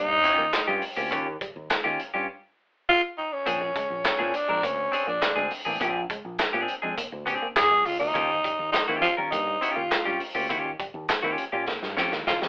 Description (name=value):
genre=funk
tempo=102 BPM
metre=4/4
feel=straight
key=unclear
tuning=A4 = 440 Hz
part: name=growling tenor saxophone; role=melody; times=0.0-12.4 s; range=Db4 to Ab4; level=-23 LUFS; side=equal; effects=none
part: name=electric guitar at the edge of break-up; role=riff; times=0.0-12.5 s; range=G3 to Bb3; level=-37 LUFS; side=right 1 dB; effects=none
part: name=fingered electric bass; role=bass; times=0.0-12.5 s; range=A1 to Eb3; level=-35 LUFS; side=equal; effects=none
part: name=clean electric guitar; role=accompaniment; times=0.2-12.1 s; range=C4 to Bb4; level=-27 LUFS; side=left 1 dB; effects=tube saturation
part: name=crunchy breakbeat drum kit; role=drums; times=0.2-12.5 s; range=handclaps, hi-hat, kick drum, snare drum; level=-28 LUFS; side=equal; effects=none
room=moderate studio ambience, RT60 0.4 s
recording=band playing live in one room, telephone sound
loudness=-23 LUFS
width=side -25 dB against mid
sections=0.0-12.5 A section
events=silent gap 2.3-3.5; drum fill 11.7-12.5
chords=0.0 Eb9; 3.5 Bb9; 8.2 Eb9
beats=0.54 | 1.12 1.71 2.29 2.88 | 3.46 4.05 4.63 5.22 | 5.81 6.39 6.98 7.57 | 8.15 8.74 9.33 9.91 | 10.50 11.09 11.68 12.27